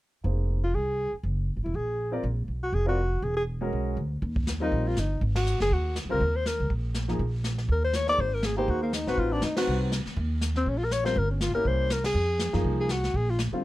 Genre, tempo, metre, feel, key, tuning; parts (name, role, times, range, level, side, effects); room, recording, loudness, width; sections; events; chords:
jazz, small-group swing and bop; 242 BPM; 4/4; swing 57% on 8ths; A4 = 439 Hz
warm concert grand piano; accompaniment; 0.2-13.6 s; D3 to D5; -31 LUFS; equal
upright bass; bass; 0.2-13.6 s; Fb1 to Gb2; -28 LUFS; equal
mellow alto saxophone; melody; 0.6-13.4 s; Bb3 to D5; -28 LUFS; left 1 dB
jazz brush drum kit; drums; 4.2-13.6 s; brushed snare drum, hi-hat, kick drum, ride cymbal, snare drum; -33 LUFS; equal
little or no reverb; close, detailed microphones; -25 LUFS; side -16 dB against mid
0.2-4.2 A section; 4.2-13.6 B section
band accent 5.3, 9.5, 12.0
0.2 Fm7; 1.2 Gbadd9; 2.2 Bb5; 3.2 E9; 4.2 Eb; 5.2 Ab7(no3); 6.2 Eb5; 7.2 N.C.; 7.7 Eb5; 8.2 Ab7; 9.2 Adim7; 10.2 Eb5; 11.2 Gdim; 11.7 C7b9; 12.1 Fm7; 13.1 Bb